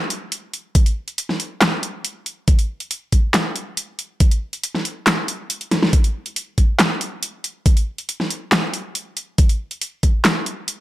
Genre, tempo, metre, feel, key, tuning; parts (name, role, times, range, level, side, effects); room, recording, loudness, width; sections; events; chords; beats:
dubstep; 139 BPM; 4/4; half-time
dubstep drum kit; drums; 0.1-10.8 s; handclaps, hi-hat, snare drum; -19 LUFS; equal; overdrive
electronic kick drum; drums; 0.8-10.1 s; -14 LUFS; equal; overdrive
little or no reverb; -18 LUFS; side -15 dB against mid
0.0-10.8 A section
kick drops out 5.5-5.9; drum fill 5.7
0.32 | 0.75 1.18 1.61 2.05 | 2.48 2.91 3.34 3.77 | 4.20 4.64 5.07 5.50 | 5.93 6.36 6.79 7.23 | 7.66 8.09 8.52 8.95 | 9.38 9.81 10.25 10.68